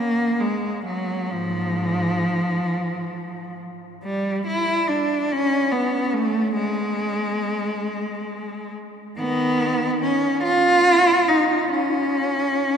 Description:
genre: classical, free, expressive piece for unaccompanied cello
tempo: 42-50 BPM (dotted quarters)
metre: 6/8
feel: rubato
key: G# dorian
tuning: A4 = 443 Hz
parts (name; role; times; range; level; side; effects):
- clear cello; solo; 0.0-12.8 s; G#2 to E#4; -20 LUFS; equal; none
room: wet cathedral reverb, RT60 4.9 s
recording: in a vast, echoing space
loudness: -19 LUFS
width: side -7 dB against mid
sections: 0.0-12.8 A section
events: none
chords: none

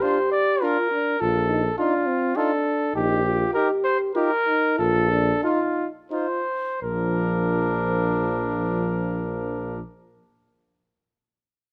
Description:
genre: classical, brass quintet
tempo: 83-105 BPM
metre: 3/4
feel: straight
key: Bb major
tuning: A4 = 440 Hz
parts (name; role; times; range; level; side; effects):
- warm trumpet; melody; 0.0-9.8 s; F4 to D5; -26 LUFS; equal; none
- clear trumpet; second line; 0.0-9.8 s; D4 to G4; -33 LUFS; equal; none
- clear trombone; accompaniment; 0.0-9.8 s; F3 to Eb4; -32 LUFS; equal; none
- mellow French horn; accompaniment; 0.0-9.8 s; F3 to G4; -29 LUFS; equal; none
- warm tuba; bass; 1.2-9.8 s; Bb1; -30 LUFS; equal; none
room: light reverb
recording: close, detailed microphones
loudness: -23 LUFS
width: mono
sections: 0.0-6.8 A section; 6.8-11.1 B section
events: slowing down 2.1-6.8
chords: 0.0 Bb; 1.2 F7/Bb; 2.9 Eb/Bb; 4.8 F7/Bb; 6.8 Bb

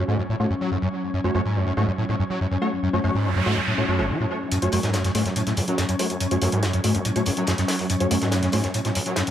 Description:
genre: driving peak-time techno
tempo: 142 BPM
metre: 4/4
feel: straight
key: F# minor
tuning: A4 = 440 Hz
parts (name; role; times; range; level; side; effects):
- screaming distorted acid line; riff; 0.0-9.3 s; F#1 to F#3; -24 LUFS; equal; distortion, ensemble chorus, tape echo
- swarming drone; drone; 0.0-9.3 s; F#3 to C#4; -28 LUFS; left 1 dB; built-in reverb
- downlifter and noise sweep; sound effects; 0.0-4.5 s; none; -30 LUFS; right 3 dB; none
- rave stab; stabs; 0.1-8.6 s; A3 to C#5; -28 LUFS; equal; chorus, built-in reverb, tape echo
- electronic hi-hat; drums; 4.5-9.3 s; none; -30 LUFS; equal; none
- warm soul drum kit; drums; 4.5-9.3 s; hi-hat, snare drum; -31 LUFS; equal; high-pass filter on hats, high-pass filter on snare, high-pass filter on room
- detuned saw bass; bass; 4.7-9.1 s; F#1 to F#2; -31 LUFS; equal; high-pass filter
room: moderate spring reverb, RT60 1.6 s, digital ambience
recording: echo-heavy mix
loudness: -21 LUFS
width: side -10 dB against mid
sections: 0.0-4.5 A section; 4.5-9.3 B section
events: filter sweep on synth stab 0.0-4.5; noise sweep 3.0-4.5; build-up 4.5-9.3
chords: 0.0 F#m

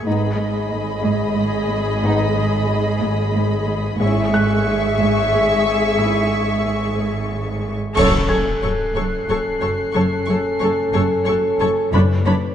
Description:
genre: cinematic, suspense film score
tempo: 91 BPM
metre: 3/4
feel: straight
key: F# minor from 8.0 s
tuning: A4 = 440 Hz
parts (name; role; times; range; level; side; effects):
- muted symphonic violin section; melody; 0.0-12.3 s; B5 to C#6; -28 LUFS; left 4 dB; none
- muted studio violin section; second line; 0.0-12.3 s; C#5 to E5; -25 LUFS; left 1 dB; none
- muted symphonic viola section; accompaniment; 0.0-12.3 s; D4 to A4; -25 LUFS; left 1 dB; none
- muted symphonic cello section; bass; 0.0-12.3 s; F#2 to G#2; -25 LUFS; right 2 dB; none
- felt-muted upright piano; texture; 0.0-12.0 s; G#5 to G#6; -32 LUFS; left 1 dB; none
- mellow French horn section; sustained chords; 0.1-12.5 s; B3 to C#5; -22 LUFS; left 1 dB; none
- muted symphonic cello section; riff; 0.1-12.5 s; F#2 to G#3; -24 LUFS; right 2 dB; none
- muted symphonic double bass section; bass; 0.1-12.3 s; F#1 to G#1; -25 LUFS; right 2 dB; none
- clash cymbals and concert bass drum; percussion; 8.0-9.3 s; none; -27 LUFS; left 1 dB; none
- sub drop; sound effects; 8.0-10.0 s; none; -29 LUFS; left 1 dB; none
- muted symphonic violin section; texture; 8.0-11.6 s; F#6 to B#6; -32 LUFS; left 2 dB; none
- timpani; percussion; 11.9-12.5 s; F#2; -19 LUFS; left 2 dB; none
room: wet concert hall reverb, RT60 1.9 s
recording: nothing above 10.5 kHz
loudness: -16 LUFS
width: side -9 dB against mid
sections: 0.0-8.0 A section; 8.0-12.5 B section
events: band accent 8.0-8.6; impact 8.0-10.0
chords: 0.1 G#m; 4.0 C#m/G#; 8.0 F#m; 11.9 Bmadd9/F#

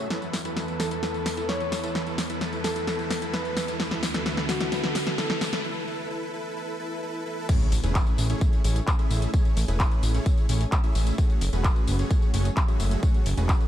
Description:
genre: EDM, festival progressive house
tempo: 130 BPM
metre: 4/4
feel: straight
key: A major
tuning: A4 = 440 Hz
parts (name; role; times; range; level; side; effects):
- soft struck synth lead; melody; 0.0-5.6 s; F#4 to C#5; -33 LUFS; left 2 dB; chorus, dub echo
- lush unison pad; sustained chords; 0.0-13.7 s; D2 to A4; -36 LUFS; right 1 dB; chorus, sidechain pumping
- dense compressed supersaw; riff; 0.0-13.7 s; A3 to E5; -33 LUFS; equal; sidechain pumping, low-pass filter, dub echo
- riser and impact; sound effects; 0.0-9.3 s; none; -36 LUFS; equal; none
- house drum kit; drums; 0.1-13.7 s; crash cymbal, handclaps, hi-hat, snare drum, tambourine; -30 LUFS; equal; none
- electronic kick drum; drums; 7.5-13.6 s; none; -22 LUFS; equal; none
- fat analog bass; bass; 7.7-13.5 s; E1 to A1; -24 LUFS; equal; sidechain pumping
room: light reverb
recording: dark, warm production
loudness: -23 LUFS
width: side -12 dB against mid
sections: 0.0-7.5 A section; 7.5-13.7 B section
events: build-up 0.0-7.5; drum fill 0.0-5.6; riser 0.0-5.6; break 5.6-7.5; drop 7.5-13.7; impact 7.5-9.3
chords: 0.1 Esus4; 3.8 D; 7.5 Amaj7; 11.2 F#madd9

